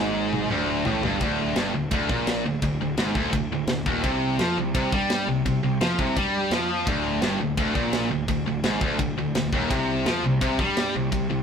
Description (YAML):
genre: heavy metal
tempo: 169 BPM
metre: 4/4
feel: straight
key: unclear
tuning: A4 = 440 Hz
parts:
  - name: high-gain distorted guitar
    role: riff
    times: 0.0-11.4 s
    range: D2 to G3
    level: -26 LUFS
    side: right 5 dB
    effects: distortion
  - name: tight distorted guitar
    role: riff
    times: 0.0-11.4 s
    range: D2 to G3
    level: -27 LUFS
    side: left 8 dB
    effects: distortion
  - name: fuzz picked electric bass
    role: bass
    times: 0.0-11.4 s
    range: D1 to G2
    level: -32 LUFS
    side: equal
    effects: overdrive
  - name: tight metal drum kit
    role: drums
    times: 0.3-11.2 s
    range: kick drum, ride cymbal, snare drum, toms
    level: -28 LUFS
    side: equal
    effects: none
room: moderate studio reverb, RT60 0.8 s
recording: band playing live in one room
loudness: -22 LUFS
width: side -7 dB against mid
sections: 0.0-1.2 A section; 1.2-11.4 B section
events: drum fill 0.0-1.2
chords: 0.0 D5; 1.2 Ebmaj7/D; 4.0 C5; 6.9 Ebmaj7/D; 9.7 C5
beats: 0.15 0.50 0.86 | 1.21 1.57 1.92 2.27 | 2.63 2.98 3.34 3.69 | 4.04 4.40 4.75 5.11 | 5.46 5.81 6.17 6.52 | 6.87 7.23 7.58 7.94 | 8.29 8.64 9.00 9.35 | 9.71 10.06 10.42 10.78 | 11.13